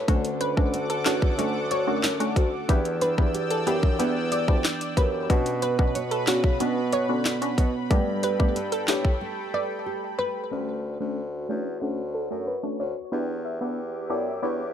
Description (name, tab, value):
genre	dancehall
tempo	92 BPM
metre	4/4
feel	straight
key	D major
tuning	A4 = 440 Hz
part	nylon-string guitar	arpeggios	0.0-11.1 s	B2 to C#5	-31 LUFS	right 3 dB	ping-pong delay
part	mellow bassoon	bass	0.0-14.7 s	D2 to D3	-30 LUFS	equal	none
part	wavetable chord stab	accompaniment	0.1-14.6 s	A3 to G4	-30 LUFS	left 1 dB	low-pass filter
part	lush unison pad	sustained chords	0.3-14.7 s	F#4 to E6	-35 LUFS	left 1 dB	chorus, sidechain pumping, low-pass filter
part	island pop drum kit	drums	0.1-9.2 s	handclaps, hi-hat, kick drum, snare drum	-24 LUFS	equal	overdrive
part	glassy wavetable pluck	melody	0.4-14.5 s	F#4 to E5	-30 LUFS	equal	chorus, low-pass filter, ping-pong delay
room	little or no reverb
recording	dark, warm production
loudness	-23 LUFS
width	side -9 dB against mid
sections	0.0-10.5 A section; 10.5-14.7 B section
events	break 9.2-10.5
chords	0.1 Dmaj7; 2.7 Em7; 5.3 Bmadd9; 7.9 Gadd9; 10.5 Dmaj7; 13.1 Em7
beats	| 0.08 0.73 1.39 2.04 | 2.69 3.34 3.99 4.65 | 5.30 5.95 6.60 7.25 | 7.91 8.56 9.21 9.86 | 10.52 11.17 11.82 12.47 | 13.12 13.78 14.43